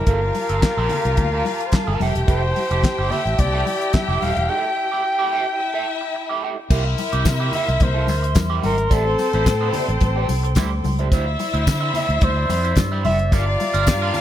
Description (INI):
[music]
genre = disco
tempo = 109 BPM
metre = 4/4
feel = straight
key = G dorian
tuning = A4 = 436 Hz
[part]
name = breathy flugelhorn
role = melody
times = 0.0-14.2 s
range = A4 to G5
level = -24 LUFS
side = equal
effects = tape echo
[part]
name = rich symphonic string section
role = second line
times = 0.0-14.2 s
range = C4 to G5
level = -27 LUFS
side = left 4 dB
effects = none
[part]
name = small flute group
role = sustained chords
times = 0.0-14.2 s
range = E4 to E6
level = -29 LUFS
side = right 2 dB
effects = none
[part]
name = fingered electric bass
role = bass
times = 0.0-14.1 s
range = Eb1 to D3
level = -22 LUFS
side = equal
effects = none
[part]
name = electric guitar at the edge of break-up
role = accompaniment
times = 0.1-14.2 s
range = F3 to Bb4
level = -28 LUFS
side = right 8 dB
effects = wah
[part]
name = damped 70s drum kit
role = drums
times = 0.1-14.2 s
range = crash cymbal, handclaps, hi-hat, kick drum, snare drum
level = -21 LUFS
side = equal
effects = none
[part]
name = congas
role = percussion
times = 0.1-14.2 s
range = none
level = -29 LUFS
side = left 5 dB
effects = none
[part]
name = tambourine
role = percussion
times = 6.7-14.2 s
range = none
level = -37 LUFS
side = left 8 dB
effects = none
[sound]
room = light reverb, small room ambience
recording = none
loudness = -17 LUFS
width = side -11 dB against mid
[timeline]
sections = 0.0-6.7 A section; 6.7-14.2 B section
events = break 4.5-6.7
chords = 0.1 Gm9; 2.0 Fmaj9; 6.7 C7; 8.9 Am7; 11.1 Dm9; 13.3 Gm7